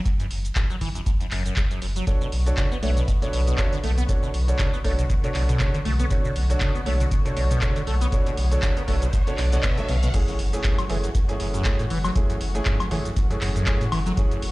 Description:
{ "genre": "acid house", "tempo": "119 BPM", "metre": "4/4", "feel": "swing 56% on 16ths", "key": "F# minor", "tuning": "A4 = 441 Hz", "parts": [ { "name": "liquid acid bass", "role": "riff", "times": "0.1-14.4 s", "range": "F#2 to D4", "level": "-29 LUFS", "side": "equal", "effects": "phaser, overdrive, analog chorus, tape echo" }, { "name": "electro analog drum machine", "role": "drums", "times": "0.1-14.5 s", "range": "crash cymbal, handclaps, hi-hat, shaker, woodblock", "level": "-32 LUFS", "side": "equal", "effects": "none" }, { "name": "electronic kick drum", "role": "drums", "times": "0.1-14.3 s", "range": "none", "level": "-24 LUFS", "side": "equal", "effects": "none" }, { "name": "warm sub bass", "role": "bass", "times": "0.3-14.5 s", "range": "F#1 to B1", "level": "-23 LUFS", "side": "equal", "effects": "tube saturation, sidechain pumping" }, { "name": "muted studio string section", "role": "sustained chords", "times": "2.1-14.5 s", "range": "D3 to C#5", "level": "-35 LUFS", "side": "left 2 dB", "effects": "sidechain pumping" }, { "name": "warm grand piano", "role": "stabs", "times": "2.1-14.4 s", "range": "A3 to C#5", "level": "-30 LUFS", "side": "right 2 dB", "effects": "tape echo" }, { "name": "riser and impact", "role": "sound effects", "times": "8.0-12.2 s", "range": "none", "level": "-35 LUFS", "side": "equal", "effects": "none" } ], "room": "little or no reverb", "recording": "played on a big sound system in a bare room, large studio reverb", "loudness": "-20 LUFS", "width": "side -20 dB against mid", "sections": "0.0-10.1 A section; 10.1-14.5 B section", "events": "riser 8.0-10.1; drop 10.1-14.5; impact 10.1-12.2", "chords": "0.0 N.C.; 2.1 Bm7; 10.1 F#m7" }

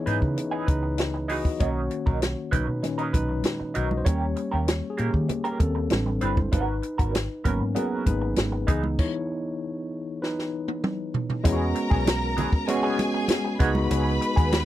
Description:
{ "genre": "lush 1970s-style soul", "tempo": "98 BPM", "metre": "4/4", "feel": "straight", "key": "unclear", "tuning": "A4 = 440 Hz", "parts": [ { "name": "tine electric piano", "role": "accompaniment", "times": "0.0-14.7 s", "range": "A#2 to E5", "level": "-28 LUFS", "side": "left 1 dB", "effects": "slow stereo tremolo" }, { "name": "electric guitar through a small old amp", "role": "riff", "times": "0.1-14.6 s", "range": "E3 to B4", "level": "-31 LUFS", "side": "right 5 dB", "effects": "wah, tremolo" }, { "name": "vintage muted fingered electric bass", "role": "bass", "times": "0.1-14.7 s", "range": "G1 to D#3", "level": "-28 LUFS", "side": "equal", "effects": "none" }, { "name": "compact cocktail drum kit", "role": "drums", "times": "0.1-14.7 s", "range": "crash cymbal, hi-hat, kick drum, snare drum, toms", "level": "-24 LUFS", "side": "equal", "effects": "none" }, { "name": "congas", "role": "percussion", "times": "1.6-14.7 s", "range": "none", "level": "-32 LUFS", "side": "right 3 dB", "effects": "none" }, { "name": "rich studio violin section", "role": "second line", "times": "11.5-14.7 s", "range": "G#4 to B5", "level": "-30 LUFS", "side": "left 1 dB", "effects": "none" } ], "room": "little or no reverb", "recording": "dry, close 1970s-style studio recording", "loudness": "-23 LUFS", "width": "side -14 dB against mid", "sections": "0.0-11.5 A section; 11.5-14.7 B section", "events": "tine electric piano solo 0.0-11.5; stop 9.0-11.5; drum fill 10.2-11.5", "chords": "0.0 C#m9; 1.6 Bmaj9; 4.1 D#7; 5.9 Am11; 6.5 G#m11; 8.7 C#m9; 11.5 E6; 13.6 C#7sus4" }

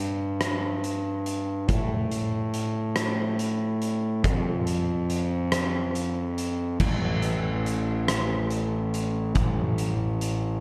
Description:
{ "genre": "post-rock", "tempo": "47 BPM (dotted quarters)", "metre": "6/8", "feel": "straight", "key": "unclear", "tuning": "A4 = 440 Hz", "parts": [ { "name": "fuzz picked electric bass", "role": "bass", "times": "0.0-10.6 s", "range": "A1 to A2", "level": "-29 LUFS", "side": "equal", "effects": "overdrive" }, { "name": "huge arena drum kit", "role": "drums", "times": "0.4-10.4 s", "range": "crash cymbal, hi-hat, kick drum, rim click", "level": "-32 LUFS", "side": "equal", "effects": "none" } ], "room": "little or no reverb", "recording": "none", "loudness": "-27 LUFS", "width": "mono", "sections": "0.0-6.8 A section; 6.8-10.6 B section", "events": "none", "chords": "none" }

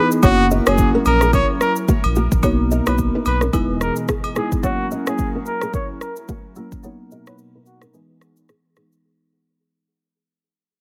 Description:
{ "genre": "afrobeats", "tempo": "109 BPM", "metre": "4/4", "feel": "swing 58% on 16ths", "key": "F# mixolydian", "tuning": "A4 = 442 Hz", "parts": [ { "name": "clear trumpet", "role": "melody", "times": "0.0-7.8 s", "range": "F#4 to C#5", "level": "-24 LUFS", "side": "equal", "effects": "low-pass filter, delay" }, { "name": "marimba with medium mallets", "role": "accompaniment", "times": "0.0-9.0 s", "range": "E3 to G#4", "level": "-25 LUFS", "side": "equal", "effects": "low-pass filter" }, { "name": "hollow soft pad", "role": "sustained chords", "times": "0.0-9.0 s", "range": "B2 to D#5", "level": "-32 LUFS", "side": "equal", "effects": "chorus, low-pass filter" }, { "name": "nylon-string guitar", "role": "riff", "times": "0.0-8.9 s", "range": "A#3 to D#5", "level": "-26 LUFS", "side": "equal", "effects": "low-pass filter" }, { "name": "afro-pop drum kit", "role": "drums", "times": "0.1-9.0 s", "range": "kick drum, rim click, shaker", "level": "-23 LUFS", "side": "equal", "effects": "none" }, { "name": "sub bass with octave", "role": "bass", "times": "0.2-3.9 s", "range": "E1 to B1", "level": "-23 LUFS", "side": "equal", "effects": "none" }, { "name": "agogo bells", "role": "percussion", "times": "0.2-4.3 s", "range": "none", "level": "-31 LUFS", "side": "equal", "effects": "none" } ], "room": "light reverb, small room ambience", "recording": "heavily compressed radio sound, multiband compression", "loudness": "-18 LUFS", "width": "mono", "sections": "0.2-9.0 A section", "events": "fade-out 0.2-9.0; filter sweep 0.2-9.0; break 7.9-9.0", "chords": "0.2 F#7; 2.4 Bmaj7; 3.5 Emaj7; 4.6 F#7; 6.8 Bmaj7; 7.9 Emaj7" }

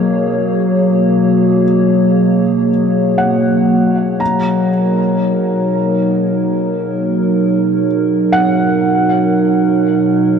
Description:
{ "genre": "ambient", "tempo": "free time", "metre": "none", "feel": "none", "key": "unclear", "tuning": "A4 = 440 Hz", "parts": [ { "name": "warbly tape-like pad", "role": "sustained chords", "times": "0.0-10.4 s", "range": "B2 to C#5", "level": "-12 LUFS", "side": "equal", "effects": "chorus, built-in reverb" }, { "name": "felt-muted upright piano", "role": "arpeggios", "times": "0.0-10.4 s", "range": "A#4 to A#5", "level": "-21 LUFS", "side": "equal", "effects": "diffuse ambient delay" } ], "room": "wet huge ambient reverb, RT60 8.2 s", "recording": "dark, warm production", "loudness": "-12 LUFS", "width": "side -7 dB against mid", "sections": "0.0-4.2 A section; 4.2-10.4 B section", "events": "none", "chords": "0.0 F#add9/B" }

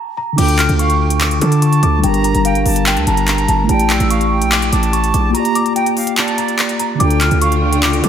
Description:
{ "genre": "hip hop, trap", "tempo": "145 BPM", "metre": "4/4", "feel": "half-time", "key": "D harmonic minor", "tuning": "A4 = 440 Hz", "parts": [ { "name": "celesta", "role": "melody", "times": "0.0-8.1 s", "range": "F5 to F6", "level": "-20 LUFS", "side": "right 1 dB", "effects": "analog chorus, tape echo" }, { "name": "mellow tine electric piano", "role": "accompaniment", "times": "0.3-8.1 s", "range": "D3 to D5", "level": "-18 LUFS", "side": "equal", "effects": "medium stereo tremolo" }, { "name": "silver concert flute", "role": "second line", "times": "0.4-8.1 s", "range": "D5 to Bb5", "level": "-22 LUFS", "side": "right 3 dB", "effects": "tape echo" }, { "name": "distorted 808-style bass", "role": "bass", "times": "0.4-8.1 s", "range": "G1 to D3", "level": "-16 LUFS", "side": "equal", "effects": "distortion" }, { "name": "trap drum kit", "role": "drums", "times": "0.4-8.1 s", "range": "crash cymbal, handclaps, hi-hat", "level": "-19 LUFS", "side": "left 1 dB", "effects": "none" }, { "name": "warm symphonic string section", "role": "sustained chords", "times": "7.0-8.1 s", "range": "D3 to F4", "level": "-21 LUFS", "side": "left 2 dB", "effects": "none" } ], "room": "moderate plate reverb, RT60 2.1 s", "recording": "dreamy mix soaked in reverb", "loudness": "-12 LUFS", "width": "side -9 dB against mid", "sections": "0.4-8.1 A section", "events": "break 0.0-0.4, 5.3-7.0", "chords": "0.4 Dm; 2.0 Gmadd9; 3.7 A7sus4; 5.3 Bb6; 7.0 Dm" }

